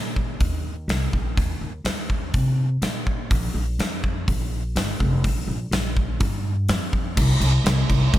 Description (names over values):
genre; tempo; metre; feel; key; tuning
rock, shoegaze and dream pop; 124 BPM; 4/4; straight; unclear; A4 = 441 Hz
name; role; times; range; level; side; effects
upright bass; bass; 0.0-8.2 s; F1 to C3; -23 LUFS; equal; none
gated 80s drum kit; drums; 0.2-8.2 s; crash cymbal, hi-hat, kick drum, snare drum; -23 LUFS; equal; none
room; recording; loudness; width
little or no reverb; none; -21 LUFS; side -14 dB against mid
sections
0.0-7.2 A section; 7.2-8.2 B section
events
none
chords
none